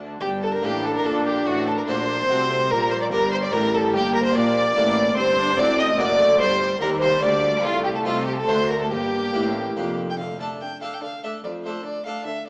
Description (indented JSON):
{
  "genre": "classical, baroque-style concerto movement with solo episodes",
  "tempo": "145 BPM",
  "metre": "3/4",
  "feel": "straight",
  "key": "G minor",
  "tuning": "A4 = 440 Hz",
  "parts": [
    { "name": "rich chamber violin section", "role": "melody", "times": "0.0-12.5 s", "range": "F#4 to Eb6", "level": "-33 LUFS", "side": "equal", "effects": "none" },
    { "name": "warm studio violin section", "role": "second line", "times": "0.0-12.5 s", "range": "D4 to Eb5", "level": "-28 LUFS", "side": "equal", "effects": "none" },
    { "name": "harpsichord", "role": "accompaniment", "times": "0.0-12.4 s", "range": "C2 to A4", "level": "-31 LUFS", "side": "equal", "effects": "none" },
    { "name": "rich chamber viola section", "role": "accompaniment", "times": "0.0-12.5 s", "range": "D3 to D4", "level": "-30 LUFS", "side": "equal", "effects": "none" },
    { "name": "warm chamber cello section", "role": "bass", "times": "0.0-11.8 s", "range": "C2 to C3", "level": "-33 LUFS", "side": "equal", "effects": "none" },
    { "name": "clear violin", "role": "melody", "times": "0.2-12.5 s", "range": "F4 to A5", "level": "-26 LUFS", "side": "equal", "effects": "none" },
    { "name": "rich chamber double bass section", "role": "bass", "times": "0.2-10.2 s", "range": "F1 to Eb2", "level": "-36 LUFS", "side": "equal", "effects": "none" }
  ],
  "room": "wet scoring stage reverb, RT60 1.7 s",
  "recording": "small speaker sound",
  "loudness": "-22 LUFS",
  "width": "mono",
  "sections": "0.2-10.2 A section; 10.2-12.5 B section",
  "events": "none",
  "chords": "0.2 Gm; 1.5 D7/A; 2.7 Gm; 5.2 D7/G; 6.4 Gm; 7.6 Adim/C; 8.5 D7; 8.9 Gm; 10.2 D5; 11.4 Dm/F"
}